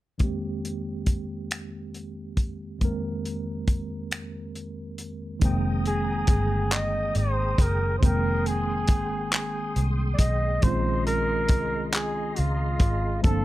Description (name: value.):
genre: slow six-eight R&B.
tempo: 46 BPM (dotted quarters).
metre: 6/8.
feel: straight.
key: F minor.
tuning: A4 = 439 Hz.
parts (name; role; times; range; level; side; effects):
mellow tine electric piano; accompaniment; 0.2-13.4 s; F2 to A5; -31 LUFS; right 1 dB; medium stereo tremolo, low-pass filter.
warm soul drum kit; drums; 0.2-13.4 s; finger snaps, handclaps, hi-hat, kick drum; -23 LUFS; equal; none.
mellow tonewheel organ; sustained chords; 5.4-13.4 s; Bb3 to Eb6; -37 LUFS; equal; chorus vibrato, slow rotary speaker.
vintage muted fingered electric bass; bass; 5.4-13.4 s; F1 to Db2; -27 LUFS; equal; none.
breathy flugelhorn; melody; 5.9-13.4 s; F4 to Eb5; -29 LUFS; equal; none.
room: little or no reverb.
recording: none.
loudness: -23 LUFS.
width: side -16 dB against mid.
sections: 0.2-5.4 A section; 5.4-13.4 B section.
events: filter sweep on tine electric piano 0.2-5.4.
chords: 0.2 Fm11; 10.6 Bbm11.